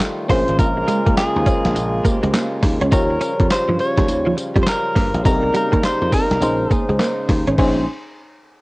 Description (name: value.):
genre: R&B, new jack swing.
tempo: 103 BPM.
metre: 4/4.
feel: swing 63% on 16ths.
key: Bb dorian.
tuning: A4 = 436 Hz.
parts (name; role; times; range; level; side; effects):
FM electric piano; accompaniment; 0.0-7.9 s; C4 to Db5; -24 LUFS; left 1 dB; chorus, cassette tape.
hand-pumped harmonium; sustained chords; 0.0-7.9 s; Db3 to C5; -25 LUFS; equal; cassette tape.
dusty soul sampler-style drum kit; drums; 0.0-7.8 s; crash cymbal, handclaps, hi-hat, kick drum, snare drum, tambourine; -19 LUFS; equal; cassette tape.
direct-recorded clean electric guitar; melody; 0.3-7.0 s; Ab4 to Db5; -22 LUFS; equal; cassette tape.
direct-recorded clean electric guitar; riff; 0.3-7.8 s; F3 to Eb4; -23 LUFS; right 2 dB; ensemble chorus, cassette tape.
dry thumbed slap bass; bass; 0.3-7.9 s; Ab1 to G2; -22 LUFS; equal; none.
room: light reverb, digital ambience.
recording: home recording on cassette.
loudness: -15 LUFS.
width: side -22 dB against mid.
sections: 0.0-7.6 A section; 7.6-8.6 B section.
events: none.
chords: 0.3 Bbm9; 2.9 Eb9; 5.3 Cm7; 6.4 Bbm11.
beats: 0.01 | 0.59 1.17 1.76 2.34 | 2.92 3.50 4.09 4.67 | 5.25 5.83 6.42 7.00 | 7.58.